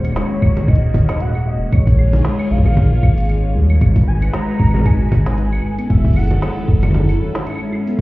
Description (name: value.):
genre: IDM.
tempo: 115 BPM.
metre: 4/4.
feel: swing 56% on 16ths.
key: unclear.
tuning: A4 = 440 Hz.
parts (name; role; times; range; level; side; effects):
phased analog pad; sustained chords; 0.0-8.0 s; Eb3 to Db5; -27 LUFS; equal; phaser, chorus.
harp-like synth pluck; arpeggios; 0.0-8.0 s; Ab2 to Ab4; -23 LUFS; equal; chorus.
round analog bass; bass; 0.0-8.0 s; Eb1 to Eb2; -15 LUFS; equal; none.
organic electronic drum kit; drums; 0.0-8.0 s; claves, congas, hi-hat, snare drum; -23 LUFS; equal; none.
warm velvety synth lead; melody; 0.2-6.7 s; Db5 to Bb5; -29 LUFS; equal; chorus, ping-pong delay.
electronic kick drum; drums; 0.4-8.0 s; none; -14 LUFS; equal; overdrive.
room: little or no reverb.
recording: heard muffled through a wall, club reverb, EQ, lossy compression artefacts.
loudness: -13 LUFS.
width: side -19 dB against mid.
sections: 0.0-8.0 A section.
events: none.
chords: 0.0 Ebm7; 1.7 Bbm7; 3.8 Abm7; 5.6 Gbm7.